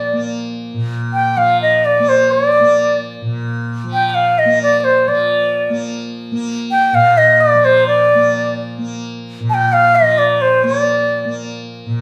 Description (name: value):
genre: indian classical, Hindustani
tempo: 130 BPM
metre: 3/4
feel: straight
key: Bb raga bilaval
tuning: A4 = 440 Hz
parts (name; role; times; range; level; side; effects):
- bright reedy bansuri; melody; 0.0-11.3 s; C5 to A5-21c; -14 LUFS; equal; none
- tanpura; drone; 0.0-12.0 s; Bb2 to Bb3; -24 LUFS; equal; none
room: wet large studio reverb, RT60 1.0 s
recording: band playing live in one room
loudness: -14 LUFS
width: mono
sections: 0.0-5.1 A section; 5.1-12.0 B section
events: none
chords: none